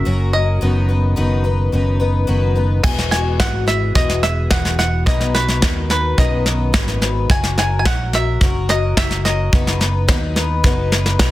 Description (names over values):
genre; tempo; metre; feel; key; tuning
indie folk with a building arrangement; 108 BPM; 4/4; straight; E lydian; A4 = 440 Hz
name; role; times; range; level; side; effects
bluegrass banjo; melody; 0.0-11.3 s; B4 to G#5; -22 LUFS; equal; none
fingerpicked steel-string acoustic guitar; accompaniment; 0.0-7.3 s; E2 to F#4; -25 LUFS; left 1 dB; none
picked twelve-string acoustic guitar; accompaniment; 0.0-11.3 s; B2 to B4; -24 LUFS; left 4 dB; none
fingered electric bass; bass; 0.0-11.3 s; E1 to D#2; -18 LUFS; equal; none
soft brush drum kit; drums; 2.8-11.3 s; crash cymbal, kick drum, snare drum; -17 LUFS; equal; soft clipping on snare
room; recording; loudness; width
light reverb, small room ambience; dense, heavily limited modern master; -14 LUFS; side -15 dB against mid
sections
0.0-2.8 A section; 2.8-11.3 B section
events
none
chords
0.0 F#; 0.6 B/F#; 2.8 Eadd9; 5.1 B; 7.3 F#; 9.5 B/F#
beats
0.06 | 0.61 1.17 1.73 2.29 | 2.84 3.40 3.96 4.51 | 5.07 5.63 6.18 6.74 | 7.30 7.86 8.41 8.97 | 9.53 10.08 10.64 11.20